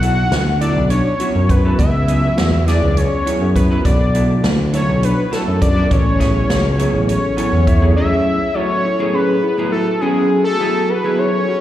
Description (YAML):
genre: progressive instrumental, band music in an uneven meter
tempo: 204 BPM (eighths)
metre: 7/8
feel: straight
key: B dorian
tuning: A4 = 441 Hz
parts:
  - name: fat analog lead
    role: melody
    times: 0.0-11.6 s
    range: G#4 to F#5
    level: -20 LUFS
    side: left 1 dB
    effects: slapback echo, tape echo
  - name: vintage hollow-body jazz guitar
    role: accompaniment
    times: 0.0-11.5 s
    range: A2 to G#5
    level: -21 LUFS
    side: right 2 dB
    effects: slapback echo
  - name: tine electric piano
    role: arpeggios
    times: 0.0-11.6 s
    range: B3 to G#4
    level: -24 LUFS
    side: left 2 dB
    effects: slapback echo
  - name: smooth synth bass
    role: bass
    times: 0.0-7.9 s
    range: A1 to F#2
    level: -16 LUFS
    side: equal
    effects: none
  - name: swinging big-band drum kit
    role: drums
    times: 0.0-7.8 s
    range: hi-hat, kick drum, snare drum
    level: -19 LUFS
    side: equal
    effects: none
  - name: vibraphone with soft mallets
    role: second line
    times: 7.1-11.6 s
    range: E4 to C#5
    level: -24 LUFS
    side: left 3 dB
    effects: slapback echo, tape echo
room: light reverb, small room ambience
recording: live gig heard through the venue's PA, recital hall reverb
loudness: -13 LUFS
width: side -12 dB against mid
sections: 0.0-8.0 A section; 8.0-11.6 B section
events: hollow-body jazz guitar fill 7.1-8.0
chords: 0.0 Bm7; 1.8 C#m7; 3.9 Bm7; 5.9 Amaj7; 10.0 F#m7